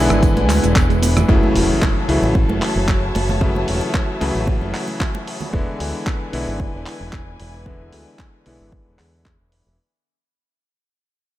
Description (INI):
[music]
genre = nu-disco, nu disco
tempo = 113 BPM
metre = 4/4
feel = straight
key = F# minor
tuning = A4 = 439 Hz
[part]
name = bright electric grand piano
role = accompaniment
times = 0.0-9.8 s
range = C#3 to E4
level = -22 LUFS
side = left 2 dB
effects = vintage 12-bit sampler grit, sidechain pumping, low-pass filter, ping-pong delay
[part]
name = warm symphonic string section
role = sustained chords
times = 0.0-9.7 s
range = E4 to A5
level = -28 LUFS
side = left 1 dB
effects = sidechain pumping
[part]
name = soft round pluck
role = arpeggios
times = 0.0-1.3 s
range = E3 to B3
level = -24 LUFS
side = right 6 dB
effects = chorus, sidechain pumping, ping-pong delay
[part]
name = fingered electric bass with an envelope filter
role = bass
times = 0.0-9.8 s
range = E1 to E2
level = -21 LUFS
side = equal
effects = sidechain pumping
[part]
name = dusty soul sampler-style drum kit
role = drums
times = 0.1-9.6 s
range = handclaps, hi-hat, rim click, shaker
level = -26 LUFS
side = equal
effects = none
[part]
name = tambourine and congas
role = percussion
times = 0.1-5.5 s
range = none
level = -26 LUFS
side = right 3 dB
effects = none
[part]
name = electronic kick drum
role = drums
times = 0.2-9.4 s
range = none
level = -18 LUFS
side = equal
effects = overdrive
[part]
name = impact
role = sound effects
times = 1.3-3.4 s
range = none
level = -26 LUFS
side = equal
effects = none
[sound]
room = little or no reverb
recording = none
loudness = -16 LUFS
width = side -14 dB against mid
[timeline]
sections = 0.0-1.3 A section; 1.3-9.8 B section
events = drop 0.0-1.3; fade-out 1.3-9.8; impact 1.3-3.4; filter sweep on electric grand piano 1.3-9.8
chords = 0.0 E7; 1.3 F#m7; 5.5 E7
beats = 0.23 0.76 | 1.29 1.82 2.35 2.88 | 3.41 3.94 4.47 5.00 | 5.54 6.07 6.60 7.13 | 7.66 8.19 8.72 9.25